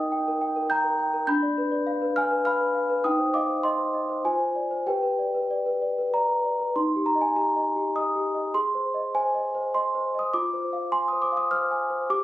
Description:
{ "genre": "classical, lullaby for celesta", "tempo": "101 BPM", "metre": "3/4", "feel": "rubato", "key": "unclear", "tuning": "A4 = 440 Hz", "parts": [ { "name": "celesta", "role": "solo", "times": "0.0-12.2 s", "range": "D4 to G6", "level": "-23 LUFS", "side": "equal", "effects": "none" } ], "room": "moderate studio reverb, RT60 0.6 s", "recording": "recorded on a phone in the room, club reverb, compression", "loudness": "-23 LUFS", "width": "side -15 dB against mid", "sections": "0.0-6.7 A section; 6.7-12.2 B section", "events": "none", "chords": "0.0 Eb; 1.3 G7/D; 3.1 Cm/Eb; 4.2 Dm7b5/F; 4.9 G; 6.7 Eb; 8.5 Ab; 10.3 Dm7b5/F", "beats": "0.12 0.70 | 1.28 1.87 2.46 | 3.05 3.65 4.25 | 4.88 5.51 6.13 | 6.75 7.35 7.95 | 8.54 9.14 9.74 | 10.33 10.92 11.51 | 12.09" }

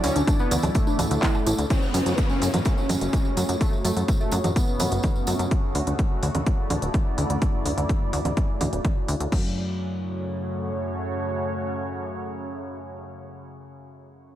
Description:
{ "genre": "melodic techno", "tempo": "126 BPM", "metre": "4/4", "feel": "straight", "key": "F# minor", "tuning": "A4 = 437 Hz", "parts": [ { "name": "wide unison lead", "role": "melody", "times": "0.0-5.4 s", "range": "A3 to C#4", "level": "-30 LUFS", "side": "equal", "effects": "sidechain pumping, dub echo" }, { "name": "deep dark ambient pad", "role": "sustained chords", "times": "0.0-13.7 s", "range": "A3 to D5", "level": "-31 LUFS", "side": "equal", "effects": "chorus, built-in reverb, vintage 12-bit sampler grit, sidechain pumping" }, { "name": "plucky analog bass", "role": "bass", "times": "0.0-10.7 s", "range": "D1 to F#2", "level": "-25 LUFS", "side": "equal", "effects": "sidechain pumping" }, { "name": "overtone-sweeping drone", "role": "drone", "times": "0.0-13.7 s", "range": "F#2 to C#3", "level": "-36 LUFS", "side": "equal", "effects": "chorus, built-in reverb, phaser, sidechain pumping" }, { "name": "techno drum kit", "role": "drums", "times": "0.0-9.4 s", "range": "congas, crash cymbal, handclaps, hi-hat, woodblock", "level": "-31 LUFS", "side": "right 2 dB", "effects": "overdrive, sidechain pumping on hats, studio reverb, sidechain pumping on perc, sidechain pumping on cymbals" }, { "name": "tambourine", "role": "percussion", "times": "0.0-5.5 s", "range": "none", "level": "-36 LUFS", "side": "right 4 dB", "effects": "none" }, { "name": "woody wave-folded pluck", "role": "arpeggios", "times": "0.2-1.7 s", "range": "E3 to E4", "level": "-29 LUFS", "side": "right 1 dB", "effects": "wide subtle chorus, sidechain pumping, tape echo" }, { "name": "electronic kick drum", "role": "drums", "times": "0.3-9.4 s", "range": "none", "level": "-23 LUFS", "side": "equal", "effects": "overdrive, studio reverb" }, { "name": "downlifter", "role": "sound effects", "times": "1.7-5.5 s", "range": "none", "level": "-33 LUFS", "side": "equal", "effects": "none" } ], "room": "light reverb", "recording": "none", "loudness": "-22 LUFS", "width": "side -12 dB against mid", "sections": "0.0-1.7 A section; 1.7-9.3 B section; 9.3-13.1 C section", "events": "drop 0.0-1.7", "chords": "0.0 Dadd9; 1.7 F#m; 5.5 Dadd9; 9.3 F#m", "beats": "0.27 0.75 1.23 | 1.70 2.18 2.65 3.13 | 3.61 4.08 4.56 5.04 | 5.51 5.99 6.46 6.94 | 7.42 7.89 8.37 8.85 | 9.32 9.80 10.27 10.75 | 11.23 11.70 12.18 12.65" }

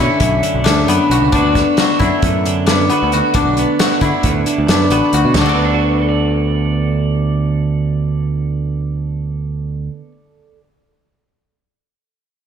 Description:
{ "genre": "math rock and midwest emo", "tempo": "267 BPM (eighths)", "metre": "9/8", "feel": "straight", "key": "D major", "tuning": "A4 = 440 Hz", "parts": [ { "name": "twelve-string electric guitar", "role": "accompaniment", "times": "0.0-10.7 s", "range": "D2 to D5", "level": "-19 LUFS", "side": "right 7 dB", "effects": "slapback echo" }, { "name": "guzheng", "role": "arpeggios", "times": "0.0-10.0 s", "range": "B3 to D5", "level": "-16 LUFS", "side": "left 4 dB", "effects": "slapback echo" }, { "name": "growling picked electric bass", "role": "bass", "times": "0.0-9.9 s", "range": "A1 to D3", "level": "-18 LUFS", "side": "right 1 dB", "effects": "overdrive" }, { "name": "loose indie drum kit", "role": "drums", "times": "0.2-5.5 s", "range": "crash cymbal, hi-hat, kick drum, snare drum, toms", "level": "-19 LUFS", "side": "equal", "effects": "none" } ], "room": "moderate lush hall reverb, RT60 1.9 s, small room ambience", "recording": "big arena sound", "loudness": "-13 LUFS", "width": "side -8 dB against mid", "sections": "0.0-5.4 A section; 5.4-9.4 B section", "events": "none", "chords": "0.0 Bm9; 1.3 D6", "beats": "0.21 0.43 0.65 0.88 1.10 | 1.33 1.55 1.77 2.00 2.22 2.45 2.67 2.90 3.12 | 3.34 3.57 3.79 4.02 4.24 4.47 4.69 4.92 5.14 | 5.36 5.59 5.81 6.04 6.26 6.49 6.71 6.94 7.16 | 7.39 7.61 7.84 8.06 8.29 8.51 8.73 8.96 9.19" }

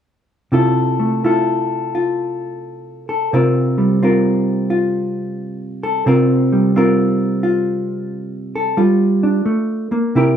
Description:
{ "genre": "solo jazz", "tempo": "88 BPM", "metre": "4/4", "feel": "swing 67% on 8ths, rubato", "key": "F major", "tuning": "A4 = 441 Hz", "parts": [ { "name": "hollow-body jazz guitar", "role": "solo", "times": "0.5-10.4 s", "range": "C3 to Bb4", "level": "-15 LUFS", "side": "equal", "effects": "none" } ], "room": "moderate studio ambience, RT60 0.5 s", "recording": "band playing live in one room", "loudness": "-14 LUFS", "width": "side -8 dB against mid", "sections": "0.5-10.4 A section", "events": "none", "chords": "0.5 Fmaj7/C; 3.3 C7sus4; 8.8 Gm7", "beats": "| 0.51 1.22 1.92 2.61 | 3.30 4.00 4.69 5.37 | 6.05 6.73 7.41 8.09 | 8.77 9.46 10.15" }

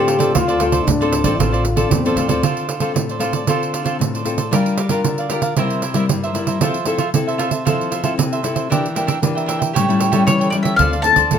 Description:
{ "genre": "samba and choro", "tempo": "115 BPM", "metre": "4/4", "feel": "straight", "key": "D minor", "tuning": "A4 = 440 Hz", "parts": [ { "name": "mandolin", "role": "melody", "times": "0.0-1.9, 10.3-11.4 s", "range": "C#5 to A5", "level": "-15 LUFS", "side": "left 5 dB", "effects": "none" }, { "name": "mellow trombone", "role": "second line", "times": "0.0-2.4 s", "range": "C4 to G4", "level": "-20 LUFS", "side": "left 4 dB", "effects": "none" }, { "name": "cavaquinho", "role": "accompaniment", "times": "0.0-11.4 s", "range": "D4 to G5", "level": "-23 LUFS", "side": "right 6 dB", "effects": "none" }, { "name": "nylon-string guitar", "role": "accompaniment", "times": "0.0-11.4 s", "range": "G2 to Bb4", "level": "-20 LUFS", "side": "left 4 dB", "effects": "none" }, { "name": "upright bass", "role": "bass", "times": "0.0-2.4, 10.8-11.4 s", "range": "A1 to D3", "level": "-22 LUFS", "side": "equal", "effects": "none" }, { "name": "pandeiro", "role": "percussion", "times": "0.1-11.4 s", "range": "none", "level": "-21 LUFS", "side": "right 7 dB", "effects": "none" } ], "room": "moderate large studio reverb, RT60 1.1 s", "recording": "close, detailed microphones", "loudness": "-15 LUFS", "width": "side -8 dB against mid", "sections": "0.0-2.4 A section; 2.4-10.8 B section", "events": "none", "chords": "0.0 Dm7; 4.5 Gm7; 5.6 C7; 6.6 Fmaj7; 8.7 Em7b5; 9.7 A7; 10.8 Dm7", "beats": "| 0.35 0.87 1.39 1.92 | 2.44 2.96 3.48 4.00 | 4.53 5.05 5.57 6.09 | 6.62 7.14 7.66 8.18 | 8.70 9.23 9.75 10.27 | 10.79 11.31" }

